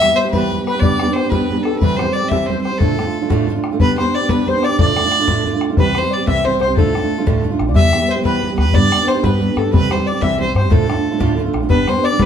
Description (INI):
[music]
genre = celtic folk, Celtic jig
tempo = 121 BPM (dotted quarters)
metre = 6/8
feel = straight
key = D dorian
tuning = A4 = 440 Hz
[part]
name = rich fiddle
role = melody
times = 0.0-12.3 s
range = A4 to E5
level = -19 LUFS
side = left 1 dB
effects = none
[part]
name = steel pan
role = second line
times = 0.0-12.3 s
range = A4 to E5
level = -24 LUFS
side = left 5 dB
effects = none
[part]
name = fingerpicked steel-string acoustic guitar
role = accompaniment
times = 0.0-12.3 s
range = D2 to G4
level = -18 LUFS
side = right 3 dB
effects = none
[part]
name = bodhran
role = percussion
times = 0.0-12.3 s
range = none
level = -19 LUFS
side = left 2 dB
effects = none
[part]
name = upright bass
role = bass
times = 5.8-12.3 s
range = G1 to G2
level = -20 LUFS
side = equal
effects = none
[sound]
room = wet studio reverb, RT60 0.8 s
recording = band playing live in one room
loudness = -14 LUFS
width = side -8 dB against mid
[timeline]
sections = 0.0-5.8 A section; 5.8-12.3 A section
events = none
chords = 0.0 Em; 0.8 G; 1.8 C; 2.8 Dm; 3.8 G; 4.8 Dm; 5.8 C; 6.8 Dm; 7.8 Em; 8.7 G; 9.7 C; 10.7 Dm; 11.7 G